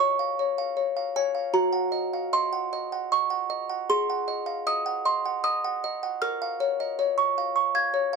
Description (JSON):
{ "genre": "classical, lullaby for music box", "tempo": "77 BPM", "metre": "3/4", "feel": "rubato", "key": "unclear", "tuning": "A4 = 440 Hz", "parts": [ { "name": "music box", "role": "solo", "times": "0.0-8.2 s", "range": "Gb4 to Ab6", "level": "-24 LUFS", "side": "right 1 dB", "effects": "none" } ], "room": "light reverb", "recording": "worn, warbling old tape, cassette tape, warbly pitch drift", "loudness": "-24 LUFS", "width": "side -5 dB against mid", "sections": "0.0-8.2 A section", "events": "none", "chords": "0.0 Bbm; 1.5 Ebm/Gb; 3.9 Ab7; 6.2 Bbm" }